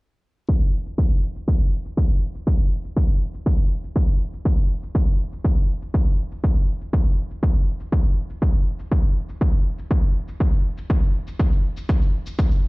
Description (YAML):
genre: techno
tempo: 121 BPM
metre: 4/4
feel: straight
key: none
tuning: none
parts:
  - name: electronic kick drum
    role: drums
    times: 0.5-12.5 s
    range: none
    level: -19 LUFS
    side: equal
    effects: overdrive
  - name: shaker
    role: drums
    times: 0.5-12.6 s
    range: none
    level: -50 LUFS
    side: left 1 dB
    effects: none
room: little or no reverb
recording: played on a big sound system in a bare room, large studio reverb, low-pass filter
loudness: -19 LUFS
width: side -24 dB against mid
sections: 0.5-12.7 A section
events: filter sweep 0.5-12.7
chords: none